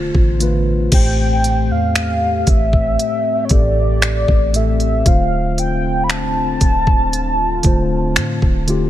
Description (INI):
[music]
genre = contemporary R&B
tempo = 58 BPM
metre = 4/4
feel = straight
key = A minor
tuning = A4 = 439 Hz
[part]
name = mellow tine electric piano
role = accompaniment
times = 0.0-8.9 s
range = A2 to C5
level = -21 LUFS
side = left 1 dB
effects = slow stereo tremolo
[part]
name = chorused pulse-width pad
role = sustained chords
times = 0.0-8.9 s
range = B2 to G4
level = -26 LUFS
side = left 3 dB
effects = none
[part]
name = warm 808-style bass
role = bass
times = 0.0-8.9 s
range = D1 to A2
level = -19 LUFS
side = equal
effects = none
[part]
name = smooth R&B drum kit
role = drums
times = 0.1-8.9 s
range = crash cymbal, finger snaps, hi-hat, kick drum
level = -16 LUFS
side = equal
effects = none
[part]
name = warm velvety synth lead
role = melody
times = 0.9-8.7 s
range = C#5 to B5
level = -20 LUFS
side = equal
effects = chorus
[sound]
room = digital ambience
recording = none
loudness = -13 LUFS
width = side -12 dB against mid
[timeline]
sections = 0.9-8.9 A section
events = none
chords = 0.0 Dm7; 0.9 Am7; 5.1 Dm7